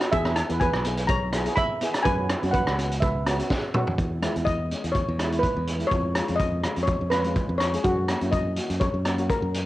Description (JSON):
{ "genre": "calypso", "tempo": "124 BPM", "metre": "4/4", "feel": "swing 53% on 16ths", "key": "unclear", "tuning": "A4 = 440 Hz", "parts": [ { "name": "steel pan", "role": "melody", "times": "0.0-9.7 s", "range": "F#4 to B5", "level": "-27 LUFS", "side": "equal", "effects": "cassette tape, plate reverb, analog delay" }, { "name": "steel pan", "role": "accompaniment", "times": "0.0-9.5 s", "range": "G#3 to B4", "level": "-32 LUFS", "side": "equal", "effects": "cassette tape, plate reverb" }, { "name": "crunchy breakbeat drum kit", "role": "drums", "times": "0.0-9.7 s", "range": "hi-hat, kick drum, rim click, snare drum, toms", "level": "-27 LUFS", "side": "equal", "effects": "cassette tape" }, { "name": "modern bright fingered electric bass", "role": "bass", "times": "0.1-9.7 s", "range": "B1 to F#2", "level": "-28 LUFS", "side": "equal", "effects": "none" } ], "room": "light reverb", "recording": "home recording on cassette", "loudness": "-22 LUFS", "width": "side -16 dB against mid", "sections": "0.0-4.0 A section; 4.0-9.7 B section", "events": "drum fill 3.5-4.0; steel pan solo 4.0-9.7", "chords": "0.1 E6; 2.1 F#7sus4; 4.0 E; 5.9 C#/E#; 7.8 F#", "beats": "| 0.13 0.61 1.09 1.57 | 2.06 2.54 3.02 3.50 | 3.98 4.47 4.95 5.43 | 5.91 6.40 6.88 7.36 | 7.85 8.33 8.81 9.29" }